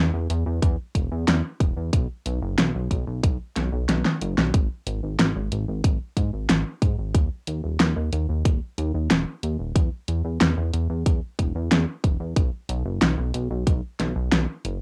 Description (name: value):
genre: synthwave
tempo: 92 BPM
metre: 4/4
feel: straight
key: unclear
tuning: A4 = 441 Hz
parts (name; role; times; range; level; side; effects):
- chorused synth bass; bass; 0.0-14.8 s; D#1 to G#2; -28 LUFS; equal; tube saturation, sidechain pumping
- pop drum kit; drums; 0.3-14.8 s; hi-hat, snare drum; -24 LUFS; equal; cassette tape
- electronic kick drum; drums; 0.6-13.8 s; none; -24 LUFS; equal; cassette tape
room: light reverb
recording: home recording on cassette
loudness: -24 LUFS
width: mono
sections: 0.0-14.8 A section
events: drum fill 3.9-4.5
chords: none